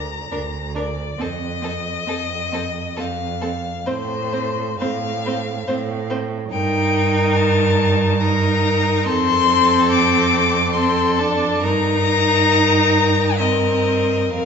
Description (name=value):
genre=classical, slow romantic movement for string quartet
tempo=61-72 BPM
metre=3/4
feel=rubato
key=unclear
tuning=A4 = 440 Hz
part: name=rich violin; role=melody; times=0.0-14.5 s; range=C5 to D6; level=-21 LUFS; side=left 7 dB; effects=none
part: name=rich cello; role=bass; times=0.0-14.5 s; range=D2 to A2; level=-23 LUFS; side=right 4 dB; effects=none
part: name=rich violin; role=second line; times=0.3-14.5 s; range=A4 to C5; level=-23 LUFS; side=left 4 dB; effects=none
part: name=clear viola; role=accompaniment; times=0.3-14.5 s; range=C4 to Eb4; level=-23 LUFS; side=right 3 dB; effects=none
room=wet recital hall reverb, RT60 1.9 s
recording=recorded in a church or concert hall, nothing above 7.8 kHz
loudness=-16 LUFS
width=side -6 dB against mid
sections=0.0-14.5 A section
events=none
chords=0.0 Bb/D; 1.2 F5; 3.9 F/A; 6.5 Eb/G; 9.1 F; 11.6 Eb/G; 13.4 Cm7/G